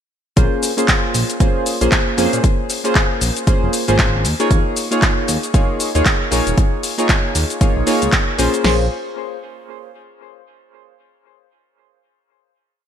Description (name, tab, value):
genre	deep house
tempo	116 BPM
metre	4/4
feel	swing 59% on 16ths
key	Bb minor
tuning	A4 = 440 Hz
part	deep mellow chord stab	stabs	0.4-8.9 s	Bb3 to Db5	-19 LUFS	equal	chorus, sidechain pumping, ping-pong delay
part	smooth synth bass	bass	0.4-8.9 s	Eb1 to Bb2	-19 LUFS	equal	none
part	punchy analog drum machine	drums	0.4-8.8 s	crash cymbal, kick drum, snare drum	-16 LUFS	equal	none
part	punchy analog drum machine	drums	0.4-8.6 s	handclaps, hi-hat, shaker	-20 LUFS	left 1 dB	none
room	light reverb, digital ambience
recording	bright 1980s-style digital production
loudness	-14 LUFS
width	side -9 dB against mid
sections	0.4-8.6 drop; 8.6-10.7 final chord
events	drop 0.4-8.6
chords	0.4 Bbm9; 4.2 Eb9sus4; 8.6 Bbm9